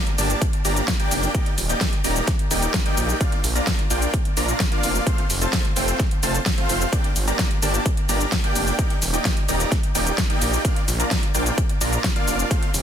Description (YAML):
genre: EDM, festival progressive house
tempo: 129 BPM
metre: 4/4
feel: straight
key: unclear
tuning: A4 = 442 Hz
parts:
  - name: big supersaw lead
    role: riff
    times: 0.0-12.6 s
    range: A3 to Bb5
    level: -24 LUFS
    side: equal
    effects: sidechain pumping, dub echo
  - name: big-room dance drum kit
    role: drums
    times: 0.1-12.8 s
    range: hi-hat, shaker, snare drum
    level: -25 LUFS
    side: left 1 dB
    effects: overdrive, studio reverb
  - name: wide detuned saw bass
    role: bass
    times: 0.2-12.8 s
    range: Eb1 to Bb1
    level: -24 LUFS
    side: equal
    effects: chorus, sidechain pumping
  - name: electronic kick drum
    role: drums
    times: 0.4-12.6 s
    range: none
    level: -22 LUFS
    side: equal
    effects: overdrive, studio reverb
room: little or no reverb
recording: dense, heavily limited modern master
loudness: -19 LUFS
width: side -9 dB against mid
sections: 0.0-12.8 A section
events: none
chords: 0.0 Gm; 1.3 Ebmaj7; 3.2 Bb; 5.1 F; 6.9 Gm; 8.8 Ebmaj7; 10.6 Bb